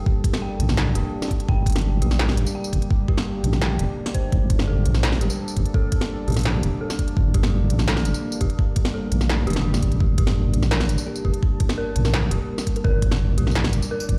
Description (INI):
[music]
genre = half-time drum and bass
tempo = 169 BPM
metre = 4/4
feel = half-time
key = G minor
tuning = A4 = 440 Hz
[part]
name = deep dark ambient pad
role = sustained chords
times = 0.0-14.2 s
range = G3 to A5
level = -33 LUFS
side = equal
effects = chorus, built-in reverb, vintage 12-bit sampler grit, sidechain pumping
[part]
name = dark detuned synth bell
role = arpeggios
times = 0.0-14.2 s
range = G4 to G5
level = -36 LUFS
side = equal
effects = chorus, delay
[part]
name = electronic kick drum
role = drums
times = 0.1-14.2 s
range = none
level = -23 LUFS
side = equal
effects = small room ambience
[part]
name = industrial drum kit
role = drums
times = 0.2-14.2 s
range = hi-hat, snare drum, tambourine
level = -30 LUFS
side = equal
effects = small room ambience
[part]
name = deep soft wobble bass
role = bass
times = 0.6-14.2 s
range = F1 to Bb1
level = -23 LUFS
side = equal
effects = chorus
[part]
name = swell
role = sound effects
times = 9.4-10.0 s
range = none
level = -36 LUFS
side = equal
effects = none
[part]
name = kalimba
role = melody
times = 11.1-12.9 s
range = G4 to Bb4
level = -37 LUFS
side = equal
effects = vintage 12-bit sampler grit, delay
[sound]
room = digital ambience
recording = played on a big sound system in a bare room, large studio reverb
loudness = -22 LUFS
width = mono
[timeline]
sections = 0.0-14.2 A section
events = swell 9.4-10.0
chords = 0.0 Gmadd9